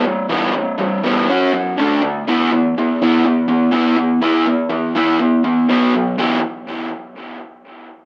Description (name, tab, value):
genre	rock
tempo	122 BPM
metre	4/4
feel	straight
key	E minor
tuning	A4 = 437 Hz
part	raw garage guitar	solo	0.0-6.4 s	B2 to G4	-17 LUFS	equal	overdrive, tape echo
room	moderate club reverb, RT60 0.7 s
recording	nothing above 10.7 kHz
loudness	-16 LUFS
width	mono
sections	0.0-6.2 A section; 6.2-8.1 B section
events	none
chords	0.0 Em; 1.3 F#5; 1.8 D5; 2.3 E5; 5.7 B5; 6.2 Em